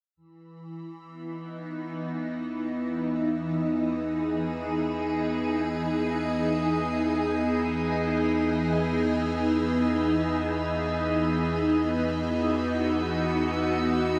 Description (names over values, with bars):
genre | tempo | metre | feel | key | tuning
ambient | free time | none | none | E major | A4 = 440 Hz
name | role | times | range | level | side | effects
evolving wavetable pad | sustained chords | 0.2-14.2 s | E3 to G#4 | -27 LUFS | equal | chorus, built-in reverb, phaser
round analog bass | bass | 0.2-14.2 s | E2 | -41 LUFS | equal | none
drifting glass-harmonics texture | texture | 0.7-14.2 s | E6 | -43 LUFS | equal | chorus, built-in reverb
room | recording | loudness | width
wet shimmer reverb, RT60 7.8 s | none | -27 LUFS | mono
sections
0.2-14.2 A section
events
fade-in on analog synth bass 0.2-14.2; fade-in on synth texture 0.2-14.2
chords
0.2 Emaj7